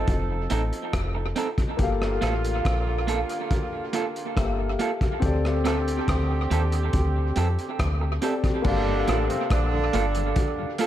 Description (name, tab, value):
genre	lovers rock reggae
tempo	70 BPM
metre	4/4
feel	straight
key	G minor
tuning	A4 = 440 Hz
part	clear horn section	second line	0.0-10.7 s	C3 to A4	-31 LUFS	right 5 dB	tape echo
part	warm concert grand piano	accompaniment	0.0-10.9 s	Bb3 to F5	-30 LUFS	left 5 dB	tape echo
part	deep dub fingered electric bass	bass	0.0-10.3 s	F1 to F2	-25 LUFS	equal	none
part	crunchy breakbeat drum kit	drums	0.1-10.9 s	crash cymbal, hi-hat, kick drum, rim click	-28 LUFS	equal	gated reverb, tape echo
part	electric guitar through a small old amp	stabs	0.5-10.9 s	Bb3 to A4	-30 LUFS	right 5 dB	tape echo
part	mellow tonewheel organ	accompaniment	8.9-10.9 s	G2 to F4	-34 LUFS	left 7 dB	overdrive, chorus vibrato, slow rotary speaker
room	small room reverb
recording	none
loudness	-22 LUFS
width	side -12 dB against mid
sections	0.0-8.6 A section; 8.6-10.9 B section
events	none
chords	0.0 F7; 1.8 Gm9; 5.2 D7sus4; 8.6 Gm9